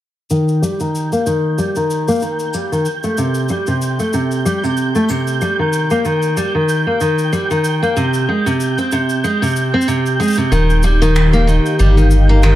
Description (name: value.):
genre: folktronica.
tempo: 94 BPM.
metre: 4/4.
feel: swing 56% on 16ths.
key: Eb major.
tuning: A4 = 440 Hz.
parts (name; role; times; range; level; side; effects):
picked steel-string acoustic guitar; arpeggios; 0.3-12.6 s; C3 to C4; -15 LUFS; equal; low-pass filter, tape echo.
cabasa and finger snaps; drums; 0.3-12.6 s; none; -30 LUFS; left 1 dB; none.
flickering grainy texture; texture; 1.0-12.6 s; G6; -23 LUFS; right 4 dB; built-in reverb.
warm analog pad; sustained chords; 10.5-12.6 s; Eb3 to F5; -19 LUFS; left 2 dB; chorus.
warm sub bass; bass; 10.5-12.6 s; Eb1 to G1; -11 LUFS; equal; tube saturation.
room: light reverb, studio ambience.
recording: none.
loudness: -13 LUFS.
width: side -13 dB against mid.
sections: 0.3-12.6 A section.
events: filter sweep on steel-string acoustic guitar 0.3-12.6.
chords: 0.3 Eb; 2.9 C5; 5.4 Eb; 8.0 Ab; 10.5 Ebadd9.